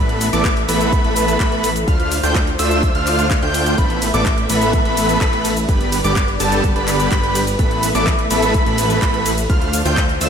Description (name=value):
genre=EDM, festival progressive house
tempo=126 BPM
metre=4/4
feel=straight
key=A minor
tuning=A4 = 440 Hz
part: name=dark studio string section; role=sustained chords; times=0.0-10.3 s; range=D3 to E5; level=-24 LUFS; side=equal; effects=sidechain pumping
part: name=wide unison lead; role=arpeggios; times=0.0-10.3 s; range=A5 to G6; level=-22 LUFS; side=equal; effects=sidechain pumping, diffuse ambient delay
part: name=big supersaw lead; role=riff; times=0.0-10.3 s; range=D3 to G5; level=-19 LUFS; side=right 1 dB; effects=sidechain pumping, diffuse ambient delay
part: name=fat analog bass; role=bass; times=0.0-10.3 s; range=G1 to D2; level=-22 LUFS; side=equal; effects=sidechain pumping
part: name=big-room dance drum kit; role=drums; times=0.1-10.3 s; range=handclaps, hi-hat, ride cymbal, shaker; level=-24 LUFS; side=equal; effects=overdrive, small room ambience
part: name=electronic kick drum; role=drums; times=0.4-10.1 s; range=none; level=-18 LUFS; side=equal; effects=small room ambience
room=moderate lush hall reverb, RT60 1.7 s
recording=dreamy mix soaked in reverb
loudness=-14 LUFS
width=side -7 dB against mid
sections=0.0-10.3 A section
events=none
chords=0.0 Asus2; 1.9 Dm7; 3.8 Asus2; 5.7 G; 7.6 Asus2; 9.5 Dm7